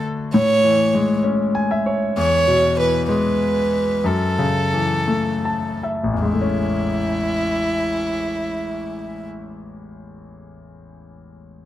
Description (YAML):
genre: pop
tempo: 50-66 BPM (dotted quarters)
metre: 6/8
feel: straight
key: A major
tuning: A4 = 441 Hz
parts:
  - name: warm violin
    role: melody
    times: 0.0-9.3 s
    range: E4 to C#5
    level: -21 LUFS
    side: right 2 dB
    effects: none
  - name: bright concert grand piano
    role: accompaniment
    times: 0.0-11.7 s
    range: A1 to A5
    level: -20 LUFS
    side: left 2 dB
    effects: none
room: moderate plate reverb, RT60 1.6 s, small room ambience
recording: none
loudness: -17 LUFS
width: side -12 dB against mid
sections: 0.0-6.2 A section; 6.2-11.0 B section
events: grand piano fill 1.2-2.2, 5.1-6.2; slowing down 2.2-6.2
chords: 0.3 Amaj7; 2.2 E; 4.0 F#m7; 6.2 Amaj7